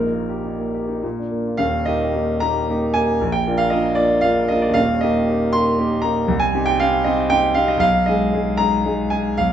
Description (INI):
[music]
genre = classical, romantic character piece for solo piano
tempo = 116 BPM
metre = 3/4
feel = uneven beats, rubato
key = Eb major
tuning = A4 = 439 Hz
[part]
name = warm concert grand piano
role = solo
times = 0.0-9.5 s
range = Eb1 to C6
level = -17 LUFS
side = equal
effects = none
[sound]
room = wet large studio reverb, RT60 0.9 s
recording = heard from further back in the room, nothing above 7.9 kHz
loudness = -17 LUFS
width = side -9 dB against mid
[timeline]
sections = 0.0-1.6 A section; 1.6-9.5 B section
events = none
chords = 0.0 Eb/Bb; 1.0 Bb; 1.6 Eb; 3.2 Bb; 4.8 Eb; 6.3 Cm; 7.8 Abm/Cb